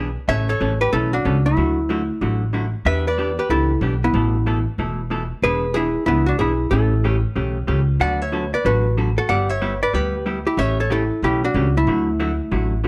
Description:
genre	country, western swing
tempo	186 BPM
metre	4/4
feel	swing 63% on 8ths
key	D major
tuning	A4 = 435 Hz
part	vintage hollow-body jazz guitar	accompaniment	0.0-12.9 s	B2 to A4	-28 LUFS	equal	none
part	upright bass	bass	0.0-12.9 s	E1 to E2	-24 LUFS	equal	none
part	hollow-body jazz guitar	melody	0.3-12.8 s	A3 to F#5	-23 LUFS	equal	none
room	moderate studio reverb, RT60 0.9 s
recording	none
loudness	-20 LUFS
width	mono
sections	0.0-12.9 A section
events	none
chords	0.3 A; 1.6 Dadd9; 2.9 Em7; 4.1 Asus2; 5.4 E7; 6.7 A7; 8.0 D6; 9.3 G6; 10.6 A7; 11.9 Dadd9

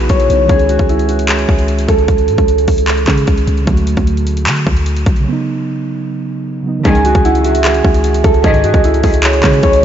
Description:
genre	hip hop, trap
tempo	151 BPM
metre	4/4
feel	half-time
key	C# minor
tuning	A4 = 440 Hz
part	concert harp	melody	0.0-4.1, 6.9-9.8 s	E4 to C#5	-15 LUFS	right 1 dB	low-pass filter, diffuse ambient delay
part	muted felt-like synth keys	accompaniment	0.0-9.8 s	C#3 to G#4	-20 LUFS	right 3 dB	chorus, low-pass filter
part	clean 808-style bass	bass	0.0-9.8 s	B1 to D3	-15 LUFS	equal	none
part	trap drum kit	drums	0.0-9.8 s	handclaps, hi-hat, kick drum	-15 LUFS	equal	overdrive
part	hollow clarinet-like synth lead	second line	6.9-9.8 s	C#5 to G#5	-17 LUFS	right 2 dB	chorus, diffuse ambient delay
part	rich symphonic string section	stabs	6.9-8.8 s	G#2 to D#3	-21 LUFS	left 2 dB	diffuse ambient delay
room	light reverb, digital ambience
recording	nothing above 7.6 kHz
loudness	-10 LUFS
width	side -10 dB against mid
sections	0.0-6.9 A section; 6.9-9.8 B section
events	break 2.1-6.9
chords	0.5 C#sus2; 3.7 D; 5.3 Badd9; 6.9 C#sus2

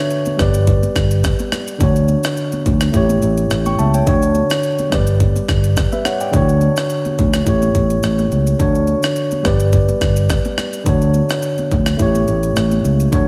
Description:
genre	afrobeats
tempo	106 BPM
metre	4/4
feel	swing 55% on 16ths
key	D major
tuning	A4 = 441 Hz
part	bright tine electric piano	accompaniment	0.0-13.3 s	D3 to C#6	-20 LUFS	equal	none
part	jungle sampler-style drum kit	drums	0.1-13.3 s	kick drum, rim click, shaker	-22 LUFS	equal	none
part	congas	percussion	0.3-13.3 s	none	-30 LUFS	equal	none
part	fingered electric bass	bass	0.4-13.3 s	G1 to D2	-18 LUFS	equal	none
room	light reverb, digital ambience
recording	none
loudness	-16 LUFS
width	mono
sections	0.0-13.3 A section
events	none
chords	0.4 G; 1.8 Dmaj7; 2.9 A7; 4.1 Dmaj7; 4.9 G; 6.3 Dmaj7; 7.5 A7; 8.6 Dmaj7; 9.4 G; 10.9 Dmaj7; 12.0 A7

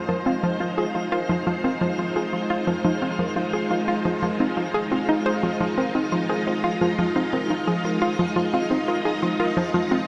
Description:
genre	ambient, sequencer-driven space music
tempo	87 BPM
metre	4/4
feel	straight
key	F minor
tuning	A4 = 445 Hz
part	string machine, full ensemble	sustained chords	0.0-10.1 s	Ab3 to Eb5	-28 LUFS	equal	ensemble chorus
part	warbly dusty pluck	arpeggios	0.0-10.1 s	F3 to F5	-30 LUFS	equal	chorus, tape echo
part	hollow square pluck	riff	0.0-10.0 s	F3 to C5	-27 LUFS	equal	chorus, tape echo
part	twinkling granular texture	texture	0.0-10.1 s	F5	-41 LUFS	equal	built-in reverb
room	wet huge ambient reverb, RT60 7.5 s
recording	in a vast, echoing space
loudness	-24 LUFS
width	mono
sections	0.0-10.1 A section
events	fade-in on synth texture 0.0-10.1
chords	0.0 Fm7

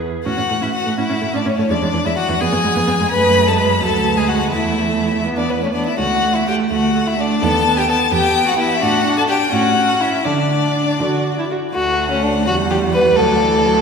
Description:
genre	quick classical-period movement for string quartet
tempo	84 BPM (dotted quarters)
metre	6/8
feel	rubato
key	A major, D major from 6.0 s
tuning	A4 = 440 Hz
part	warm viola	accompaniment	0.0-13.8 s	E3 to F#4	-21 LUFS	right 2 dB	none
part	rich cello	bass	0.0-13.8 s	C#2 to D3	-22 LUFS	right 3 dB	none
part	clear violin	melody	0.3-13.8 s	B4 to B5	-20 LUFS	left 5 dB	none
part	warm violin	second line	0.3-13.8 s	B3 to B4	-19 LUFS	left 1 dB	none
room	wet church reverb, RT60 3.0 s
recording	none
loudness	-14 LUFS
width	side -6 dB against mid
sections	0.3-11.7 A section; 11.7-13.8 B section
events	none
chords	0.3 A; 1.7 E7; 2.4 Fdim; 3.1 F#m; 3.8 D; 4.5 Esus4; 5.3 E5; 6.0 A/C#; 6.7 D; 7.4 B7/D#; 8.1 Em; 8.8 D/A; 9.5 A; 10.3 D; 12.5 Emadd9; 13.2 D

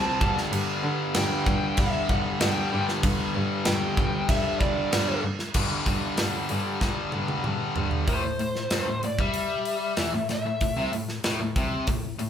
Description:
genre	hard rock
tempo	95 BPM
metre	4/4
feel	straight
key	unclear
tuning	A4 = 440 Hz
part	bluesy overdriven lead guitar	melody	0.0-10.9 s	C5 to A5	-29 LUFS	left 1 dB	distortion
part	distorted electric guitar	riff	0.0-12.3 s	G2 to C4	-32 LUFS	right 5 dB	overdrive
part	tight distorted guitar	riff	0.0-12.3 s	G2 to C4	-30 LUFS	left 7 dB	distortion
part	rich cello	bass	0.2-12.3 s	C2 to D3	-32 LUFS	equal	none
part	tight metal drum kit	drums	0.2-12.3 s	crash cymbal, hi-hat, kick drum, snare drum, toms	-28 LUFS	equal	none
room	moderate studio reverb, RT60 0.8 s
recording	band playing live in one room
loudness	-23 LUFS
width	side -9 dB against mid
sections	0.0-5.6 A section; 5.6-8.1 B section; 8.1-12.3 C section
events	drum fill 6.8-8.1; lead electric guitar solo 8.1-12.3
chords	0.2 G5; 8.1 Am

